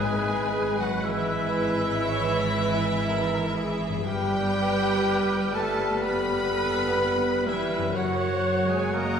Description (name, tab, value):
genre	classical, slow romantic movement for symphony orchestra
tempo	61 BPM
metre	4/4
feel	rubato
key	unclear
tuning	A4 = 440 Hz
part	rich studio violin section	melody	0.0-9.2 s	E5 to B5	-32 LUFS	left 4 dB	none
part	clear clarinet	second line	0.0-9.2 s	B4 to C#5	-35 LUFS	equal	none
part	mellow hollow concert flute	second line	0.0-9.2 s	E6 to F#6	-37 LUFS	left 2 dB	none
part	rich studio violin section	second line	0.0-9.2 s	E4 to B4	-37 LUFS	left 3 dB	none
part	warm oboe	second line	0.0-9.2 s	E4 to B4	-36 LUFS	right 2 dB	none
part	dark bassoon	accompaniment	0.0-9.2 s	F#3 to G#3	-32 LUFS	left 1 dB	none
part	warm studio viola section	accompaniment	0.0-9.2 s	G4 to D#5	-33 LUFS	right 1 dB	none
part	warm French horn section	sustained chords	0.0-9.2 s	E3 to B3	-31 LUFS	left 1 dB	none
part	concert harp	arpeggios	0.0-9.2 s	F#2 to B4	-36 LUFS	left 5 dB	none
part	clear trumpet section	stabs	0.0-9.2 s	E4 to B4	-32 LUFS	right 2 dB	none
part	rich studio cello section	bass	0.0-9.2 s	E3 to B3	-32 LUFS	right 3 dB	none
part	rich studio double bass section	bass	0.0-9.2 s	F#1 to G#1	-33 LUFS	right 4 dB	none
room	wet scoring stage reverb, RT60 1.5 s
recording	heard from further back in the room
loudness	-23 LUFS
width	side -7 dB against mid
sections	0.0-9.2 A section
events	none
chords	0.0 E/G#; 4.1 G7; 7.9 F#